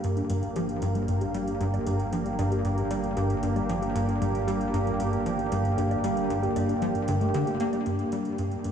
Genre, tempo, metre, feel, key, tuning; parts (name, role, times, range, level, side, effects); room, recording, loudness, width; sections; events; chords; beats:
ambient, sequencer-driven space music; 115 BPM; 4/4; straight; G minor; A4 = 437 Hz
sweeping resonant pad; sustained chords; 0.0-8.7 s; Bb3 to G4; -28 LUFS; right 1 dB; chorus
tight sequencer bass; riff; 0.0-8.7 s; G2 to Bb3; -28 LUFS; equal; lush chorus, ping-pong delay
analog drone; bass; 0.5-7.8 s; G1; -39 LUFS; equal; chorus
electronic hi-hat and woodblock; percussion; 0.0-8.7 s; -47 LUFS; right 2 dB; overdrive, ping-pong delay
warbly dusty pluck; arpeggios; 0.2-8.7 s; G2 to G4; -34 LUFS; left 2 dB; chorus, auto-pan, cassette tape, ping-pong delay
wet huge ambient reverb, RT60 8.0 s; played on a big sound system in a bare room, large studio reverb; -25 LUFS; side -8 dB against mid
0.0-7.9 A section
filter sweep on analog synth bass 0.0-7.9
0.0 Gm
0.04 0.56 1.08 | 1.60 2.13 2.65 3.17 | 3.69 4.21 4.74 5.26 | 5.78 6.30 6.82 7.34 | 7.87 8.39